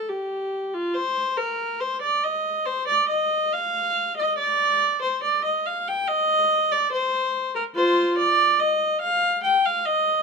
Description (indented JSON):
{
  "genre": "classical, baroque-style suite movement for unaccompanied viola",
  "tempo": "71 BPM",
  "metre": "4/4",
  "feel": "rubato",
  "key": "unclear",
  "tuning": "A4 = 440 Hz",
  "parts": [
    { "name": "warm viola", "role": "solo", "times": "0.0-10.2 s", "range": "F4 to G5", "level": "-20 LUFS", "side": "equal", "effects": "none" }
  ],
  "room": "moderate stone room reverb, RT60 1.0 s",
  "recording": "minimal, uncompressed stereo recording",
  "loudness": "-20 LUFS",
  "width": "side -4 dB against mid",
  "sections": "0.0-10.2 A section",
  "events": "none",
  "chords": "none"
}